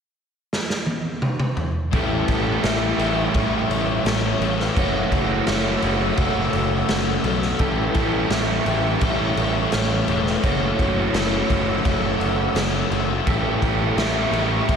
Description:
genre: rock, shoegaze and dream pop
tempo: 85 BPM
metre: 4/4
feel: straight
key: A mixolydian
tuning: A4 = 439 Hz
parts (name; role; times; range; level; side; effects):
- raw garage drum kit; drums; 0.5-14.8 s; crash cymbal, kick drum, snare drum, toms; -23 LUFS; equal; none
- soft octave-layered synth lead; melody; 1.9-14.8 s; A4 to E5; -30 LUFS; left 2 dB; chorus, tremolo, analog delay
- airy breathy pad; sustained chords; 2.5-14.8 s; A4 to E6; -30 LUFS; equal; chorus
- picked twelve-string acoustic guitar; arpeggios; 1.9-14.8 s; E3 to G4; -32 LUFS; left 9 dB; none
- biting overdriven guitar; riff; 1.9-14.8 s; A2 to G4; -25 LUFS; right 7 dB; reverse reverb
- thick fuzz guitar; riff; 1.9-14.8 s; F#2 to A3; -27 LUFS; left 9 dB; distortion, wide subtle chorus
- fuzz picked electric bass; bass; 1.9-14.8 s; E1 to B1; -26 LUFS; equal; overdrive
room: wet plate reverb, RT60 2.5 s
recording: dreamy mix soaked in reverb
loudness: -19 LUFS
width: side -7 dB against mid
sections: 0.0-1.9 A section; 1.9-14.8 B section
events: drum fill 0.5-1.9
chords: 0.0 N.C.; 1.9 A7; 4.8 F#m7; 7.6 A7; 10.4 F#m7; 13.3 A7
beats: 0.51 1.22 | 1.93 2.63 3.34 4.05 | 4.76 5.46 6.17 6.88 | 7.59 8.30 9.01 9.71 | 10.42 11.13 11.84 12.55 | 13.26 13.97 14.68

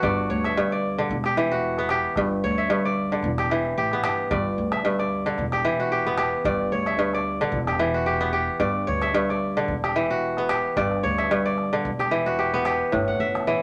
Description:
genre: west african traditional, West African string and xylophone music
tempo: 112 BPM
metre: 4/4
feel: swing 55% on 16ths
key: G lydian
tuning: A4 = 441 Hz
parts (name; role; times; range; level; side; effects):
- kora; arpeggios; 0.0-13.6 s; G2 to F#5; -24 LUFS; equal; none
- upright bass; bass; 0.0-13.6 s; E1 to D2; -34 LUFS; equal; none
- calabash; percussion; 0.0-13.5 s; none; -36 LUFS; equal; none
room: moderate studio reverb, RT60 0.7 s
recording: none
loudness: -24 LUFS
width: mono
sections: 0.0-12.9 A section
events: none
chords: 0.0 G5; 1.1 Em; 2.2 G5; 3.2 Em; 4.3 G5; 5.4 Em; 6.4 G5; 7.5 Em; 8.6 G5; 9.7 Em; 10.8 G5; 11.8 Em; 12.9 A5/G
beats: | 0.03 0.56 1.10 1.63 | 2.17 2.70 3.23 3.77 | 4.30 4.84 5.38 5.91 | 6.45 6.99 7.52 8.06 | 8.60 9.14 9.68 10.22 | 10.76 11.30 11.84 12.38 | 12.92 13.46

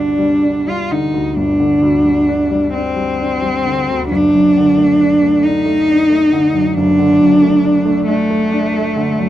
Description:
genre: classical, romantic duo for cello and grand piano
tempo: 44 BPM (dotted quarters)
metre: 12/8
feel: rubato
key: unclear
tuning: A4 = 440 Hz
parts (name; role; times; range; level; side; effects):
- warm cello; melody; 0.0-9.3 s; A3 to F4; -13 LUFS; equal; none
- warm grand piano; accompaniment; 0.0-9.3 s; F#1 to D4; -18 LUFS; equal; none
room: light reverb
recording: dark, warm production, faint mains hum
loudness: -11 LUFS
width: side -12 dB against mid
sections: 0.0-9.3 A section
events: none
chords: 0.0 G5; 4.1 D/F#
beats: 1.37 2.74 | 4.10 5.43 6.77 8.07

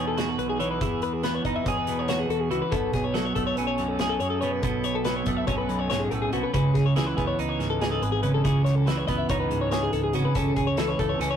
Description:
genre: math rock and midwest emo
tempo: 283 BPM (eighths)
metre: 9/8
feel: straight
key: unclear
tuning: A4 = 440 Hz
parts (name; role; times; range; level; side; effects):
- twelve-string electric guitar; accompaniment; 0.0-11.4 s; F#2 to G#4; -26 LUFS; right 3 dB; none
- twelve-string electric guitar; arpeggios; 0.0-11.4 s; F#4 to E5; -29 LUFS; left 6 dB; none
- fuzz fingered electric bass; bass; 0.0-11.4 s; G#1 to F#2; -31 LUFS; equal; overdrive
- loose indie drum kit; drums; 0.2-11.3 s; hi-hat, kick drum, snare drum; -31 LUFS; equal; none
room: wet booth ambience, RT60 0.2 s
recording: rough rehearsal-room recording, warm saturation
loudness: -23 LUFS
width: side -8 dB against mid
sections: 0.0-11.4 A section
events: none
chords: 0.0 Emaj7; 2.7 B13; 6.5 C#m9; 10.4 A/C#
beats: 0.17 0.39 0.60 | 0.81 1.02 1.24 1.45 1.66 1.87 2.08 2.30 2.51 | 2.72 2.94 3.15 3.36 3.57 3.79 4.00 4.21 4.42 | 4.63 4.85 5.06 5.27 5.48 5.70 5.91 6.12 6.33 | 6.54 6.76 6.97 7.18 7.39 7.61 7.82 8.03 8.24 | 8.45 8.66 8.88 9.09 9.30 9.51 9.72 9.94 10.15 | 10.36 10.57 10.78 11.00 11.21

